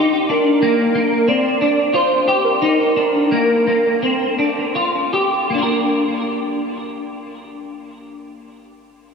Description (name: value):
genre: dream pop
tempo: 78-92 BPM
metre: 4/4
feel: straight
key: Bb major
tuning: A4 = 439 Hz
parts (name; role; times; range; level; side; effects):
- semi-hollow electric guitar; arpeggios; 0.0-8.6 s; Bb3 to Bb4; -17 LUFS; left 1 dB; ensemble chorus, tape echo
- warm velvety synth lead; melody; 0.3-4.7 s; Bb4 to D5; -20 LUFS; right 2 dB; chorus, tape echo
room: wet cathedral reverb, RT60 4.8 s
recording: dreamy mix soaked in reverb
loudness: -15 LUFS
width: side -5 dB against mid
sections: 0.0-5.5 A section; 5.5-8.6 B section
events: slowing down 0.0-5.5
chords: 0.0 Ebmaj7; 5.5 Bb